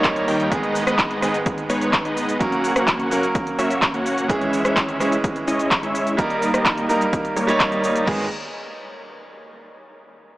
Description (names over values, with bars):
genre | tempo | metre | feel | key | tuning
EDM, festival progressive house | 127 BPM | 4/4 | straight | G# minor | A4 = 438 Hz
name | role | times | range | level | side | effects
clear concert grand piano | accompaniment | 0.0-8.3 s | G#2 to C#5 | -23 LUFS | right 2 dB | vintage 12-bit sampler grit, sidechain pumping, tape echo
dense compressed supersaw | riff | 0.0-8.2 s | G3 to G5 | -23 LUFS | equal | sidechain pumping, low-pass filter, tape echo
fat analog bass | bass | 0.0-0.5, 8.1-8.3 s | G#1 to D#2 | -28 LUFS | equal | tube saturation, sidechain pumping
big-room dance drum kit | drums | 0.0-8.2 s | crash cymbal, handclaps, hi-hat, rim click, shaker | -24 LUFS | equal | overdrive
electronic kick drum | drums | 0.0-8.2 s | none | -26 LUFS | equal | overdrive
room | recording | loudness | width
light reverb | small speaker sound | -18 LUFS | side -18 dB against mid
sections
0.0-8.1 A section; 8.1-10.0 B section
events
filter sweep on supersaw synth 0.0-8.1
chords
0.0 D#; 0.5 G#m; 2.4 F#; 4.3 C#m; 6.2 D#; 8.1 G#m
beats
0.04 | 0.52 0.99 1.46 1.93 | 2.40 2.88 3.35 3.82 | 4.29 4.77 5.24 5.71 | 6.18 6.66 7.13 7.60 | 8.07